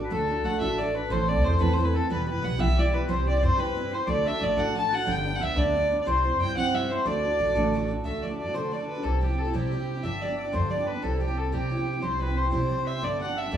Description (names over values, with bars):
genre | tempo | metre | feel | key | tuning
celtic folk, Celtic jig | 121 BPM (dotted quarters) | 6/8 | straight | D mixolydian | A4 = 441 Hz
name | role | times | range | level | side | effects
accordion | second line | 0.0-13.6 s | G4 to A5 | -34 LUFS | left 4 dB | none
picked steel-string acoustic guitar | accompaniment | 0.0-13.6 s | G2 to C5 | -29 LUFS | right 2 dB | none
rich fiddle | melody | 0.1-13.6 s | G4 to A5 | -28 LUFS | equal | none
upright bass | bass | 0.1-13.6 s | E1 to D3 | -28 LUFS | equal | none
room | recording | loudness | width
wet large studio reverb, RT60 1.1 s | band playing live in one room, small room ambience | -24 LUFS | side -9 dB against mid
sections
0.1-8.0 A section; 8.0-13.6 B section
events
none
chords
0.1 D; 1.1 Am; 2.1 Em; 3.1 C; 4.1 D; 5.1 G; 6.1 C; 7.1 D; 9.0 C; 10.0 G; 11.0 C; 13.0 G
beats
| 0.11 0.61 | 1.10 1.60 | 2.10 2.59 | 3.09 3.59 | 4.08 4.58 | 5.07 5.57 | 6.06 6.56 | 7.05 7.55 | 8.05 8.54 | 9.04 9.54 | 10.04 10.54 | 11.03 11.53 | 12.03 12.53 | 13.03 13.53